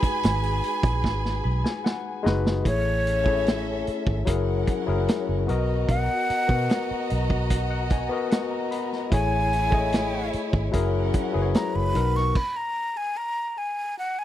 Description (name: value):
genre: lush 1970s-style soul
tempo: 74 BPM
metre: 4/4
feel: straight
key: B major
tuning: A4 = 440 Hz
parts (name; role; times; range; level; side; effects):
- breathy mellow silver concert flute; melody; 0.0-14.2 s; C#5 to C#6; -27 LUFS; equal; none
- rich studio violin section; second line; 0.0-11.9 s; C#4 to A#5; -33 LUFS; right 2 dB; none
- barky tine electric piano; accompaniment; 0.0-12.4 s; B2 to B5; -28 LUFS; left 6 dB; overdrive
- vintage drum kit; drums; 0.0-12.5 s; crash cymbal, hi-hat, kick drum, snare drum; -25 LUFS; right 1 dB; none
- vintage muted fingered electric bass; bass; 0.2-12.3 s; F#1 to B2; -26 LUFS; right 1 dB; none
room: studio reverb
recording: dry, close 1970s-style studio recording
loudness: -22 LUFS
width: side -12 dB against mid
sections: 0.0-2.7 A section; 2.7-14.2 B section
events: drum fill 1.0-2.7; tine electric piano fill 1.0-2.7, 6.7-9.1; flute solo 2.7-14.2; stop 12.4-14.2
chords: 0.0 G#m7; 2.7 Amaj7; 4.3 F#9; 5.5 Bmaj7; 9.1 Amaj7; 10.7 F#9; 12.0 Bmaj7